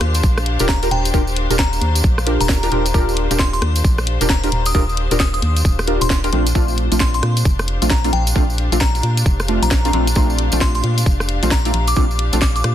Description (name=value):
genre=UK garage, two-step garage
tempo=133 BPM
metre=4/4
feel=swing 62% on 16ths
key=Eb lydian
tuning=A4 = 441 Hz
part: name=punchy chord stab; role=stabs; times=0.0-12.4 s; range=A3 to Bb4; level=-22 LUFS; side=equal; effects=chorus, ping-pong delay
part: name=organ-like FM bass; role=bass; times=0.0-12.7 s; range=Eb1 to Bb2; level=-19 LUFS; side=equal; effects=none
part: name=garage drum kit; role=drums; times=0.0-12.7 s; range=hi-hat, rim click, snare drum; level=-23 LUFS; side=equal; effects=small room ambience, soft clipping on snare
part: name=bright symphonic string section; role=texture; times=0.0-12.7 s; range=D4 to F5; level=-28 LUFS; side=left 3 dB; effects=sidechain pumping
part: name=tambourine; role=percussion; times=0.1-12.6 s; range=none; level=-28 LUFS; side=right 1 dB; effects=none
part: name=electronic kick drum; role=drums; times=0.2-12.5 s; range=none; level=-17 LUFS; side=equal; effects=small room ambience
part: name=glassy synth bell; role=melody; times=0.7-12.6 s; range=G5 to Eb6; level=-25 LUFS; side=left 2 dB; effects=chorus, ping-pong delay
room=digital ambience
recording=dense, heavily limited modern master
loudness=-14 LUFS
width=side -11 dB against mid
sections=0.0-12.7 A section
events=none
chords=0.0 Ebmaj9; 6.3 Bbmaj9